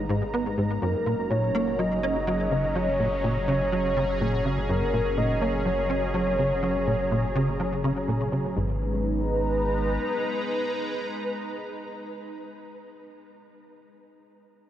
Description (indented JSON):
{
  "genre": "ambient, sequencer-driven space music",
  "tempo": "124 BPM",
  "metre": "4/4",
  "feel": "straight",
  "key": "G# minor",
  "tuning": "A4 = 439 Hz",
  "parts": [
    { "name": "sweeping resonant pad", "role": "sustained chords", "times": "0.0-12.7 s", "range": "F#3 to A#5", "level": "-31 LUFS", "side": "right 1 dB", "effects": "chorus" },
    { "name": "tight sequencer bass", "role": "riff", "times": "0.0-8.8 s", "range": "F#2 to C#4", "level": "-27 LUFS", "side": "equal", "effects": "ensemble chorus, ping-pong delay" },
    { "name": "warm sub bass", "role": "bass", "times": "0.0-10.0 s", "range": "F#1 to G#1", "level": "-32 LUFS", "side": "equal", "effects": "none" },
    { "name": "soft octave-layered synth lead", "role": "melody", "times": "0.8-12.5 s", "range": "A#4 to D#5", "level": "-29 LUFS", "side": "equal", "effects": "chorus, ping-pong delay" }
  ],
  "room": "wet huge ambient reverb, RT60 7.1 s",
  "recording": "worn, warbling old tape, cassette tape, warbly pitch drift",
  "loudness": "-23 LUFS",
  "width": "side -11 dB against mid",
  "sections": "0.0-8.6 A section; 8.6-12.4 B section",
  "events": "none",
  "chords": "0.0 G#m; 0.8 F#; 8.6 G#m"
}